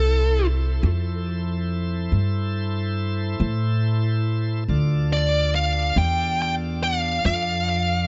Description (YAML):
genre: slow blues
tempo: 47 BPM (dotted quarters)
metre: 12/8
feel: straight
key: A minor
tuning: A4 = 441 Hz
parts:
  - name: smooth overdriven lead guitar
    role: melody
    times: 0.0-8.1 s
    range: A4 to G5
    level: -26 LUFS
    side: equal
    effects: tape echo
  - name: bright tonewheel organ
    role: sustained chords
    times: 0.0-8.1 s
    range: D4 to D5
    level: -35 LUFS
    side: equal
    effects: slow rotary speaker
  - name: upright bass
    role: bass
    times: 0.0-8.1 s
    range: C2 to A2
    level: -24 LUFS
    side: equal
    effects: none
room: studio ambience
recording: nothing above 7.8 kHz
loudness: -23 LUFS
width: mono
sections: 0.0-8.1 A section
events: none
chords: 0.0 Am; 4.7 Dm